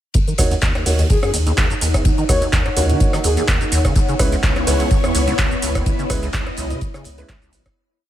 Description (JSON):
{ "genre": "acid house", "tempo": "126 BPM", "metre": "4/4", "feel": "swing 54% on 16ths", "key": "Eb phrygian", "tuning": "A4 = 440 Hz", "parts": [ { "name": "deep acid bass", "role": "riff", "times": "0.1-7.7 s", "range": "Cb2 to Eb3", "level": "-24 LUFS", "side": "equal", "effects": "analog chorus, vintage 12-bit sampler grit, sidechain pumping" }, { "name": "booming analog drum machine", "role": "drums", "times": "0.1-7.7 s", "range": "handclaps, hi-hat, ride cymbal, rim click, shaker", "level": "-23 LUFS", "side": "right 1 dB", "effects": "none" }, { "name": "damped 70s drum kit", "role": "drums", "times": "0.1-7.8 s", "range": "hi-hat, ride cymbal, snare drum", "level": "-34 LUFS", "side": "left 2 dB", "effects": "high-pass filter on cymbals, high-pass filter on hats, high-pass filter on snare, high-pass filter on room" }, { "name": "electronic kick drum", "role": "drums", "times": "0.1-7.7 s", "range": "none", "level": "-18 LUFS", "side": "equal", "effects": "none" }, { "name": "ethereal airy pad", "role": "texture", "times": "1.0-7.8 s", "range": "Eb4 to Cb6", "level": "-27 LUFS", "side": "equal", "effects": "ensemble chorus, built-in reverb, sidechain pumping" }, { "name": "warm baby grand piano", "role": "stabs", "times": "0.4-7.3 s", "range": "Ab3 to Db5", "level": "-26 LUFS", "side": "right 2 dB", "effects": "ping-pong delay" }, { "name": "warm sub bass", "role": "bass", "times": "0.4-7.7 s", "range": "Ab1 to Eb2", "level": "-20 LUFS", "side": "equal", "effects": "sidechain pumping" }, { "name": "breathy flute-like synth lead", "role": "melody", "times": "1.1-3.4 s", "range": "Ab4 to Db5", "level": "-26 LUFS", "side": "left 2 dB", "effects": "chorus, ping-pong delay" }, { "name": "string machine, full ensemble", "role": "sustained chords", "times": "4.0-7.7 s", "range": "Cb4 to Eb5", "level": "-25 LUFS", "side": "equal", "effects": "ensemble chorus, sidechain pumping" } ], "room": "light reverb, digital ambience", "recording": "none", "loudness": "-15 LUFS", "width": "side -12 dB against mid", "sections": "0.1-7.8 drop", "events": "drop 0.1-7.8; fade-out 5.2-7.8", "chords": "0.1 Ebm7; 4.0 Dbm7" }